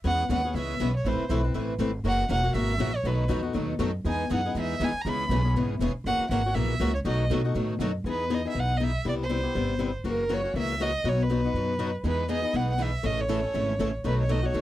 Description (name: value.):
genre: acoustic string swing (jazz manouche).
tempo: 240 BPM.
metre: 4/4.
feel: swing 57% on 8ths.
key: E major.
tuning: A4 = 440 Hz.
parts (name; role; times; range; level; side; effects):
picked swing-style acoustic guitar; accompaniment; 0.0-14.6 s; B2 to B4; -29 LUFS; left 5 dB; none.
upright bass; bass; 0.0-14.6 s; E1 to B2; -28 LUFS; equal; none.
warm violin; melody; 0.1-14.6 s; A#4 to B5; -30 LUFS; right 2 dB; none.
picked steel-string acoustic guitar; accompaniment; 0.1-7.9, 12.0-14.6 s; B2 to B4; -34 LUFS; right 8 dB; none.
room: little or no reverb.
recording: dry, close 1970s-style studio recording.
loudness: -24 LUFS.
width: side -14 dB against mid.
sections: 0.0-8.0 A section; 8.0-14.6 B section.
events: none.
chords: 0.0 E6; 1.0 Amadd9; 2.0 F#7; 3.0 B7; 4.0 Emaj7; 5.0 C#m7; 6.0 F#7; 7.0 B7; 8.0 Emaj7; 9.0 Cmaj7; 10.0 F#7; 11.0 B; 12.0 Emaj7; 13.0 A; 14.0 B7.